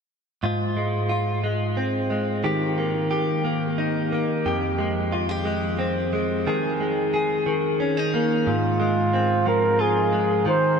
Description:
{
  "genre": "pop",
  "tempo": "60 BPM (dotted quarters)",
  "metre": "6/8",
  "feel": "straight",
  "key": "Ab major",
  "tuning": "A4 = 443 Hz",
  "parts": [
    { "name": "direct-recorded clean electric guitar", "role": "accompaniment", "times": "0.4-10.8 s", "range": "F2 to Ab4", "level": "-22 LUFS", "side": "equal", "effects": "double-tracked left and right" },
    { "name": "warm flugelhorn", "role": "melody", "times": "8.5-10.8 s", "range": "F4 to C5", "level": "-21 LUFS", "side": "right 1 dB", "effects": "tape echo" }
  ],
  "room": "wet huge ambient reverb, RT60 7.7 s",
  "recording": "dreamy mix soaked in reverb",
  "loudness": "-21 LUFS",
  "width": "side -6 dB against mid",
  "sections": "0.4-8.5 A section; 8.5-10.8 B section",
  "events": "none",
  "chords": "0.4 Ab6; 2.4 Eb; 4.5 Fmadd9; 6.5 Ab5/Eb; 7.5 Eb5; 8.5 Ab6",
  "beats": "| 0.44 1.44 | 2.44 3.45 | 4.45 5.45 | 6.46 7.46 | 8.46 9.46 | 10.46"
}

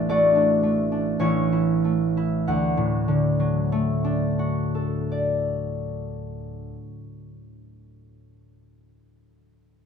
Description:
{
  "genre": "classical, solo harp piece",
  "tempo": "45-56 BPM",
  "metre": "3/4",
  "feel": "rubato",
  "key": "D major",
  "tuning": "A4 = 440 Hz",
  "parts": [
    { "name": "concert harp", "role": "solo", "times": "0.0-7.6 s", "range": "A1 to F#5", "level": "-21 LUFS", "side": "equal", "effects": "none" }
  ],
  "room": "moderate stone room reverb, RT60 1.3 s",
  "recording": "none",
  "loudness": "-20 LUFS",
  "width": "side -7 dB against mid",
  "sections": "0.0-2.5 A section; 2.5-6.1 B section",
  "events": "slowing down 0.0-2.5",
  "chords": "0.0 D/A; 1.2 A; 2.5 D",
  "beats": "0.07 1.21 | 2.48 3.70 4.90"
}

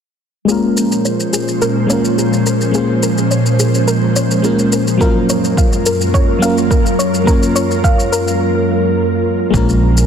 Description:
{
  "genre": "sunset chillout",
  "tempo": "106 BPM",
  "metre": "4/4",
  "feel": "straight",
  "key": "Bb minor",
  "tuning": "A4 = 440 Hz",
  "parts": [
    { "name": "mellow FM electric piano", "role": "accompaniment", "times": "0.5-10.1 s", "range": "Gb3 to Db5", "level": "-16 LUFS", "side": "moving between left 4 dB and right 3 dB", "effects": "chorus, auto-pan, low-pass filter, tape echo" },
    { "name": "ethereal airy pad", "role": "sustained chords", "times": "0.8-10.1 s", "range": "Gb2 to Ab5", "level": "-16 LUFS", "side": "equal", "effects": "ensemble chorus, built-in reverb" },
    { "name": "soft round pluck", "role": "arpeggios", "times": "0.5-8.3 s", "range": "Ab4 to F5", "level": "-21 LUFS", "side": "left 1 dB", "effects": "chorus, tape echo" },
    { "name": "shaker", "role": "drums", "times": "0.5-10.1 s", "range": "none", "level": "-23 LUFS", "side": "left 1 dB", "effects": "none" },
    { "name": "electronic kick drum", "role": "drums", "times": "5.0-9.7 s", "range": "none", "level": "-14 LUFS", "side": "equal", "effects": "none" },
    { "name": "fingered electric bass", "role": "bass", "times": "9.5-10.0 s", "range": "Bb1", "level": "-12 LUFS", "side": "right 1 dB", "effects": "none" }
  ],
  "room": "moderate scoring stage reverb, RT60 2.1 s",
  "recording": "dense, heavily limited modern master",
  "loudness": "-12 LUFS",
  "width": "side -7 dB against mid",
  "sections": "0.5-9.5 A section",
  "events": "filter sweep on FM electric piano 0.5-9.5; filter sweep on synth arpeggio sound 0.5-9.5",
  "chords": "0.5 Bbm7; 5.0 Gbmaj7; 9.5 Bbm7",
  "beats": "| 0.48 1.05 1.61 2.18 | 2.75 3.31 3.88 4.44 | 5.01 5.58 6.14 6.71 | 7.27 7.84 8.41 8.97 | 9.54"
}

